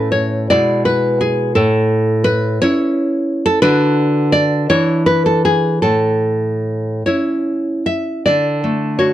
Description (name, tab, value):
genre	romantic piece for solo classical guitar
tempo	49-59 BPM (dotted quarters)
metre	6/8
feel	rubato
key	A major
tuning	A4 = 440 Hz
part	nylon-string guitar	solo	0.0-9.1 s	A2 to E5	-13 LUFS	equal	none
room	little or no reverb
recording	dry, close 1970s-style studio recording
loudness	-13 LUFS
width	side -12 dB against mid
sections	0.0-8.3 A section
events	none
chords	0.5 E/B; 1.6 A; 3.6 Bm/D; 4.7 E7; 5.9 A; 8.3 D